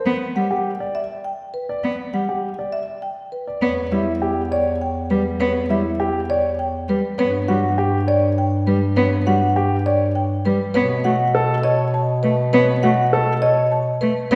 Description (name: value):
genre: classical, minimalist pattern music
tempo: 101 BPM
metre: 3/4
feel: straight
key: E dorian from 3.6 s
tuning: A4 = 440 Hz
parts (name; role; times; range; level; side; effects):
- warm concert grand piano; arpeggios; 0.0-14.4 s; E4 to D5; -27 LUFS; equal; none
- warm cello; accompaniment; 0.1-14.4 s; G3 to B3; -24 LUFS; equal; none
- marimba with medium mallets; melody; 0.4-14.4 s; B4 to A5; -25 LUFS; equal; none
- mellow bass clarinet; bass; 3.6-14.4 s; E2 to B2; -24 LUFS; equal; none
room: wet scoring stage reverb, RT60 1.6 s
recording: recorded in a church or concert hall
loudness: -20 LUFS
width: mono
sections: 0.0-3.6 A section; 3.6-14.4 B section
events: none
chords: 0.1 G; 3.6 Em; 7.2 G; 10.7 B7(no3)